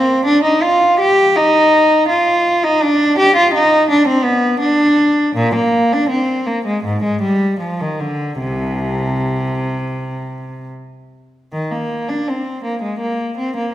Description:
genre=classical, baroque-style suite movement for unaccompanied cello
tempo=74-85 BPM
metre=4/4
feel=rubato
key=C minor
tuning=A4 = 440 Hz
part: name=warm cello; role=solo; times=0.0-13.7 s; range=C2 to G4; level=-13 LUFS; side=equal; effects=none
room=wet recital hall reverb, RT60 1.4 s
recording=none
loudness=-13 LUFS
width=side -13 dB against mid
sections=0.0-11.5 A section; 11.5-13.7 A section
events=none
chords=none

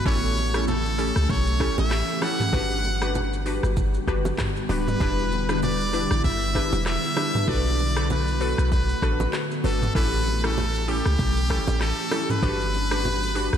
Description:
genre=afrobeats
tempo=97 BPM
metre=4/4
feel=swing 58% on 16ths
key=unclear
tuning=A4 = 444 Hz
part: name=brilliant trumpet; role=melody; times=0.0-13.6 s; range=G4 to F#5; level=-28 LUFS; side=equal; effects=tape echo
part: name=ethereal airy pad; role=sustained chords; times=0.0-13.6 s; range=D3 to G4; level=-30 LUFS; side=equal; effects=ensemble chorus, built-in reverb, tremolo
part: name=glassy wavetable pluck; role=accompaniment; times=0.1-13.6 s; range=C#4 to B4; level=-29 LUFS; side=left 1 dB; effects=chorus
part: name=clean 808-style bass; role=bass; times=0.1-13.6 s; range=D1 to C#2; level=-25 LUFS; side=equal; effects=none
part: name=afro-pop drum kit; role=drums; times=0.1-13.6 s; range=handclaps, hi-hat, kick drum, rim click, shaker, toms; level=-29 LUFS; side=equal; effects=vintage 12-bit sampler grit
part: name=congas and bongos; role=percussion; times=0.1-13.2 s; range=none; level=-34 LUFS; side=right 4 dB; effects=none
room=moderate lush hall reverb, RT60 2.7 s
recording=dreamy mix soaked in reverb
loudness=-21 LUFS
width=side -9 dB against mid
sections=0.0-13.6 A section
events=none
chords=0.1 A7; 2.5 Gmaj7; 5.0 Em7; 7.5 Bm7; 10.0 A7; 12.4 Gmaj7

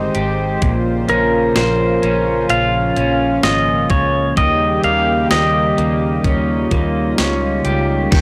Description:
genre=dream pop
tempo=64 BPM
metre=4/4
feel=straight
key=Eb mixolydian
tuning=A4 = 440 Hz
part: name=warm analog pad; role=sustained chords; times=0.0-8.2 s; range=Db3 to C5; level=-22 LUFS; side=equal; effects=chorus
part: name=electric guitar at the edge of break-up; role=arpeggios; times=0.0-8.2 s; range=Bb2 to C5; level=-23 LUFS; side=equal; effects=subtle chorus, analog delay
part: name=vintage muted fingered electric bass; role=bass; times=0.0-8.2 s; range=Ab1 to Eb2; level=-24 LUFS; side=equal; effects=none
part: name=crisp 8-bit digital drum machine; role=drums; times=0.1-8.2 s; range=crash cymbal, hi-hat, kick drum, ride cymbal, snare drum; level=-20 LUFS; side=equal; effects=none
part: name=pedal steel guitar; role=melody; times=1.1-7.1 s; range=Bb4 to F5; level=-20 LUFS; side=equal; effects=analog delay
room=light reverb, digital ambience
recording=dry, gritty hardware recording, transformer saturation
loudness=-16 LUFS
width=mono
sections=0.0-8.1 A section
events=none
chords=0.0 Abmaj7; 0.6 Bbmadd9; 4.4 Eb7

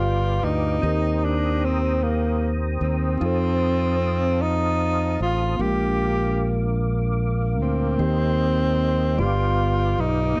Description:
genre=slow gospel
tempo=50 BPM (dotted quarters)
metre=6/8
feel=straight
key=unclear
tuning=A4 = 440 Hz
part: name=breathy tenor saxophone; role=melody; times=0.0-10.4 s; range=Bb3 to G4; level=-27 LUFS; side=equal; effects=slapback echo
part: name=mellow tine electric piano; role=accompaniment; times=0.0-10.4 s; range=G2 to D5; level=-31 LUFS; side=equal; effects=none
part: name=percussive tonewheel organ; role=sustained chords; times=0.0-10.4 s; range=Bb4 to Eb6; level=-33 LUFS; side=equal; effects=slow rotary speaker, chorus vibrato
part: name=modern bright fingered electric bass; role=bass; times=0.0-10.3 s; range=G1 to F2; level=-26 LUFS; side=equal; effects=none
room=light reverb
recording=dry, close 1970s-style studio recording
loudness=-22 LUFS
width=mono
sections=0.0-10.4 A section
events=none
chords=0.0 G7; 0.8 Cm7/Eb; 3.2 F7; 5.6 Bb7; 8.0 Eb6; 9.2 G7

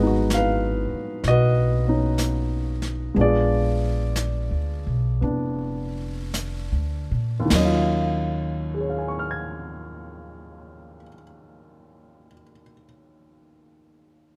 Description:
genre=jazz ballad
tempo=49-66 BPM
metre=4/4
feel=swing 66% on 8ths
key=Eb minor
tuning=A4 = 439 Hz
part: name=warm baby grand piano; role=accompaniment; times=0.0-14.4 s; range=Eb2 to Ab6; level=-27 LUFS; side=equal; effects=none
part: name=upright bass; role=bass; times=0.0-11.0 s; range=F1 to Bb2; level=-27 LUFS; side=equal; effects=none
part: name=jazz brush drum kit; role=drums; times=0.3-8.5 s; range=brushed snare drum, crash cymbal, hi-hat, snare drum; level=-30 LUFS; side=equal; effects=none
room=little or no reverb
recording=close, detailed microphones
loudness=-24 LUFS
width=mono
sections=0.0-7.5 A section; 7.5-12.4 B section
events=slowing down 0.0-7.5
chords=0.0 Abm7; 3.2 Bb7b9; 7.5 Ebm9

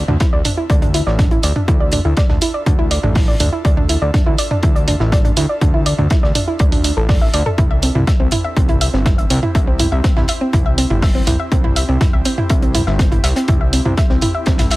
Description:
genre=melodic techno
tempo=122 BPM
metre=4/4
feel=straight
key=D minor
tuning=A4 = 440 Hz
part: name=fat analog bass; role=bass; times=0.0-14.8 s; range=G1 to D2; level=-18 LUFS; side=equal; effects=sidechain pumping
part: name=airy breathy pad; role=texture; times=0.0-14.8 s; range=C4 to E5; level=-31 LUFS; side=left 1 dB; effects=chorus, sidechain pumping
part: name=soft round pluck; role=arpeggios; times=0.1-14.8 s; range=C4 to E5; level=-20 LUFS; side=right 1 dB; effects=chorus, sidechain pumping, digital delay
part: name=punchy analog drum machine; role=drums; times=0.1-14.8 s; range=hi-hat, toms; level=-21 LUFS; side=right 1 dB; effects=sidechain pumping on hats, sidechain pumping on toms
part: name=electronic kick drum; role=drums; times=0.2-14.6 s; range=none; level=-15 LUFS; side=equal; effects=overdrive
part: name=warm soul drum kit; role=drums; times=0.2-14.8 s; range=hi-hat, snare drum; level=-30 LUFS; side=left 1 dB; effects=sidechain pumping on hats, high-pass filter on hats, high-pass filter on snare, high-pass filter on room
room=digital ambience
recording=none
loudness=-13 LUFS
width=side -19 dB against mid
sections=0.0-14.8 A section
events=fade-in on analog synth pad 0.0-14.8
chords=0.0 Dmadd9; 7.6 C

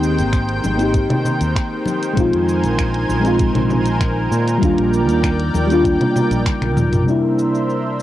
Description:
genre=sunset chillout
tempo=98 BPM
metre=4/4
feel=straight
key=Ab lydian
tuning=A4 = 440 Hz
part: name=mellow FM electric piano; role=accompaniment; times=0.0-8.0 s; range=C3 to G4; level=-18 LUFS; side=equal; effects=chorus, phaser, auto-pan, cassette tape, tape echo, plate reverb
part: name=lush unison pad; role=sustained chords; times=0.0-8.0 s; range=Eb3 to Ab5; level=-22 LUFS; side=equal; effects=chorus, cassette tape, plate reverb
part: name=mellow fretless electric bass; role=bass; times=0.0-7.0 s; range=Ab1 to Bb2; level=-20 LUFS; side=equal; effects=none
part: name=smooth R&B drum kit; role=drums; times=0.0-8.0 s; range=cabasa, finger snaps, hi-hat, toms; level=-26 LUFS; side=equal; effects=cassette tape
part: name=electronic kick drum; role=drums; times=0.3-6.6 s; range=none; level=-20 LUFS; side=equal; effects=cassette tape
part: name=congas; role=percussion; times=0.6-7.0 s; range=none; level=-22 LUFS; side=left 1 dB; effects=none
room=moderate booth ambience, RT60 0.2 s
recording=home recording on cassette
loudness=-15 LUFS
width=side -13 dB against mid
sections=0.0-7.1 A section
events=filter sweep on FM electric piano 0.0-7.1; drum fill 6.5-7.1; band accent 6.5-6.8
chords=0.0 Abmaj7; 2.2 Bb9sus4; 4.6 Ebmaj7; 7.1 C9

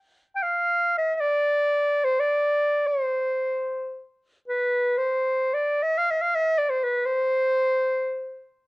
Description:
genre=Turkish makam ensemble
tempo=free time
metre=none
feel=none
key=unclear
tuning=A4 = 440 Hz
part: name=clear clarinet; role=solo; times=0.4-8.5 s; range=B4 to G5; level=-21 LUFS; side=equal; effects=cassette tape
room=moderate spring reverb, RT60 1.2 s, small room ambience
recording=home recording on cassette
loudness=-21 LUFS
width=side -24 dB against mid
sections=0.0-8.7 A section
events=none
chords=none

